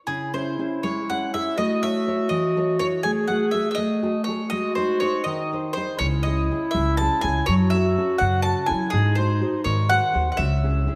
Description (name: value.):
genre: italian folk, Italian serenade.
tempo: 82 BPM (dotted quarters).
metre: 6/8.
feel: rubato.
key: C# harmonic minor.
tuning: A4 = 440 Hz.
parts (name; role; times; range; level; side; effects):
mandolin; melody; 0.1-11.0 s; G#4 to A5; -28 LUFS; equal; none.
mellow clarinet; second line; 0.1-10.4 s; D#4 to G#4; -29 LUFS; equal; none.
nylon-string guitar; accompaniment; 0.1-11.0 s; C#3 to C#5; -29 LUFS; equal; none.
upright bass; bass; 6.0-10.9 s; C#2 to F#3; -25 LUFS; equal; none.
room: moderate concert hall reverb, RT60 2.1 s.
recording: none.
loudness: -23 LUFS.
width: mono.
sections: 0.1-11.0 A section.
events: none.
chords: 0.1 C#m; 1.6 A; 3.0 F#madd9/A; 4.5 G#; 6.0 C#m; 7.5 F#m; 8.9 G#7; 10.4 C#m.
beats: | 0.07 0.83 | 1.58 2.32 | 3.05 3.78 | 4.51 5.26 | 6.00 6.75 | 7.48 8.21 | 8.93 9.65 | 10.39.